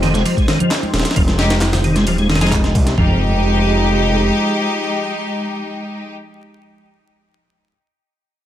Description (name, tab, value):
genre	breakbeat, breaks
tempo	132 BPM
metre	4/4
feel	straight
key	unclear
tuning	A4 = 440 Hz
part	phased analog pad	sustained chords	0.0-6.1 s	F3 to C5	-25 LUFS	right 1 dB	phaser, chorus, vintage 12-bit sampler grit, sidechain pumping
part	tonewheel organ	riff	0.0-3.2 s	Eb3 to Ab3	-19 LUFS	equal	chorus vibrato, slow rotary speaker, tube saturation, dub echo
part	detuned saw bass	bass	0.0-4.3 s	Eb1 to C2	-18 LUFS	equal	none
part	breakbeat sampler-style drum kit	drums	0.0-3.1 s	kick drum, ride cymbal, snare drum, toms	-18 LUFS	equal	none
part	garage drum kit	drums	0.1-3.0 s	handclaps, hi-hat	-27 LUFS	right 1 dB	overdrive
part	congas	percussion	0.1-2.7 s	none	-27 LUFS	left 2 dB	none
part	clear studio string section	stabs	1.4-6.1 s	Ab3 to Ab4	-19 LUFS	left 1 dB	dub echo
room	light reverb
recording	vinyl crackle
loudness	-14 LUFS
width	side -11 dB against mid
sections	0.0-3.0 A section; 3.0-6.6 B section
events	drop 0.0-3.0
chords	0.0 Fm9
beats	0.25 0.71 | 1.16 1.62 2.07 2.53 | 2.98 3.44 3.89 4.34 | 4.80 5.25 5.71